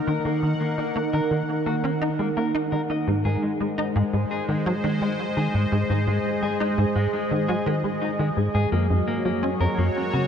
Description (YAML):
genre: ambient, sequencer-driven space music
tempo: 85 BPM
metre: 4/4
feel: straight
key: unclear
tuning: A4 = 437 Hz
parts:
  - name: sweeping resonant pad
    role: sustained chords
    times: 0.0-10.3 s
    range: Eb3 to Gb5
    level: -25 LUFS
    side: right 1 dB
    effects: chorus
  - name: clean electric guitar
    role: arpeggios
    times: 0.1-10.2 s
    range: Ab3 to Eb5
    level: -31 LUFS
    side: left 4 dB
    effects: auto-pan, analog delay
  - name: tight sequencer bass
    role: riff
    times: 0.1-10.3 s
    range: Gb2 to Eb4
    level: -24 LUFS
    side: equal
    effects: ensemble chorus, analog delay
room: wet huge ambient reverb, RT60 8.1 s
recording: dark, warm production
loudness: -21 LUFS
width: side -8 dB against mid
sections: 0.0-10.3 A section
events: fade-in on clean electric guitar 0.0-10.3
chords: 0.0 Ebm; 3.1 Ab; 8.7 Gb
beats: | 0.25 0.96 1.66 2.37 | 3.08 3.78 4.49 5.19 | 5.90 6.61 7.31 8.02 | 8.72 9.43 10.13